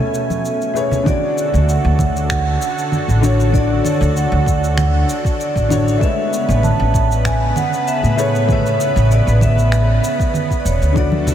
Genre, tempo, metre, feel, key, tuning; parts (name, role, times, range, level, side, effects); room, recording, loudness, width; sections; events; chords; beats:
sunset chillout; 97 BPM; 4/4; swing 53% on 16ths; A major; A4 = 440 Hz
vibraphone with medium mallets; melody; 0.0-11.3 s; A4 to A5; -21 LUFS; right 2 dB; ping-pong delay
dark baby grand piano; accompaniment; 0.0-11.3 s; D3 to G#5; -23 LUFS; moving between left 6 dB and right 2 dB; auto-pan, diffuse ambient delay
lush unison pad; sustained chords; 0.0-11.3 s; B2 to G#5; -23 LUFS; equal; chorus
electronic shaker, congas and finger snaps; drums; 0.1-11.3 s; -25 LUFS; right 3 dB; small room reverb
congas; percussion; 0.3-1.0, 11.1-11.3 s; -25 LUFS; left 1 dB
electronic kick drum; drums; 1.1-11.1 s; -19 LUFS; equal; small room reverb
upright bass; bass; 1.5-11.3 s; E1 to A2; -15 LUFS; equal
moderate huge ambient reverb, RT60 8.3 s; dreamy mix soaked in reverb; -14 LUFS; side -10 dB against mid
0.0-1.1 A section; 1.1-11.3 B section
0.0 Amaj9; 1.1 Dmaj7; 6.0 Amaj9
0.45 | 1.06 1.68 2.30 2.92 | 3.54 4.16 4.78 5.39 | 6.01 6.63 7.25 7.87 | 8.49 9.11 9.72 10.34 | 10.96